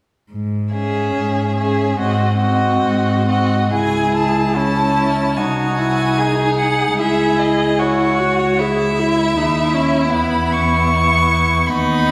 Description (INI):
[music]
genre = classical, slow romantic movement for string quartet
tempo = 63-79 BPM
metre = 4/4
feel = rubato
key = C# minor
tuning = A4 = 440 Hz
[part]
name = rich cello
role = bass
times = 0.3-12.1 s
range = B#1 to G#2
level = -22 LUFS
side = equal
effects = none
[part]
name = clear violin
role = melody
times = 0.7-12.1 s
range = C#5 to C#6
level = -23 LUFS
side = equal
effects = none
[part]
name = rich violin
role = second line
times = 0.7-12.1 s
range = D#4 to G#4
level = -22 LUFS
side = equal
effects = none
[part]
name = warm viola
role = accompaniment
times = 0.7-12.1 s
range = B3 to G#4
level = -22 LUFS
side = equal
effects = none
[sound]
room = wet scoring stage reverb, RT60 2.1 s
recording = recorded in a church or concert hall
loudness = -17 LUFS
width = mono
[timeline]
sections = 0.3-3.7 A section; 3.7-12.1 B section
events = none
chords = 0.3 C#m/G#; 2.0 G#7; 3.7 C#m; 5.4 G#7/B#; 7.0 C#m; 10.1 E5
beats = | 0.31 1.15 1.98 2.83 | 3.73 4.56 5.38 6.18 | 7.00 7.79 8.60 9.37 | 10.13 10.91 11.69